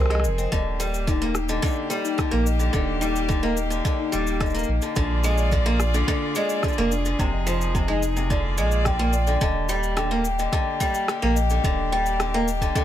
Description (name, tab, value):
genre	folktronica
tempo	108 BPM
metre	4/4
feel	straight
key	Eb major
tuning	A4 = 439 Hz
part	large celesta	second line	0.0-12.8 s	D4 to G5	-28 LUFS	left 5 dB	ping-pong delay
part	bright string quartet	sustained chords	0.0-12.8 s	F3 to D5	-31 LUFS	left 1 dB	vintage 12-bit sampler grit
part	picked old ladder-braced acoustic guitar	arpeggios	0.0-12.8 s	C3 to C4	-26 LUFS	right 1 dB	ping-pong delay
part	warm sub bass	bass	0.0-12.7 s	Eb1 to C2	-25 LUFS	right 1 dB	none
part	electronic rim click and cabasa	drums	0.0-12.8 s	none	-31 LUFS	left 1 dB	none
part	electronic kick drum	drums	0.5-12.8 s	none	-26 LUFS	right 1 dB	none
room	light reverb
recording	none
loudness	-20 LUFS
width	side -11 dB against mid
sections	0.0-9.4 A section; 9.4-12.8 B section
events	none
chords	0.0 Fm7; 0.5 Ebmaj7; 5.0 Bb7; 7.2 Fm7; 8.3 Bb7; 9.4 Ebmaj7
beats	| 0.53 1.08 1.64 2.19 | 2.75 3.30 3.86 4.41 | 4.97 5.53 6.08 6.64 | 7.19 7.75 8.30 8.86 | 9.41 9.97 10.53 11.08 | 11.64 12.19 12.75